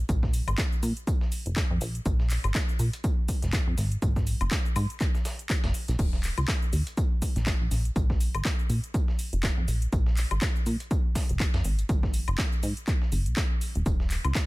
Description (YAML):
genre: piano house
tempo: 122 BPM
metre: 4/4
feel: swing 57% on 16ths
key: unclear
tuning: A4 = 440 Hz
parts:
  - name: plucky analog bass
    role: bass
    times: 0.0-14.3 s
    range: Eb1 to Bb2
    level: -27 LUFS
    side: equal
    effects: sidechain pumping
  - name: dusty soul sampler-style drum kit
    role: drums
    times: 0.1-14.5 s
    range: hi-hat, snare drum, tambourine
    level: -43 LUFS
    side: equal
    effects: sidechain pumping on perc, high-pass filter on perc, high-pass filter on snare, sidechain pumping on hats, high-pass filter on hats
  - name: electronic kick drum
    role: drums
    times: 0.1-14.5 s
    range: none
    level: -27 LUFS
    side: equal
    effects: overdrive
  - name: house drum kit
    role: drums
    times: 0.1-14.5 s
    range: crash cymbal, handclaps, hi-hat, shaker, woodblock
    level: -34 LUFS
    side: left 1 dB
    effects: overdrive
room: little or no reverb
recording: none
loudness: -24 LUFS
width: side -20 dB against mid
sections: 0.0-14.5 A section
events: none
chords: none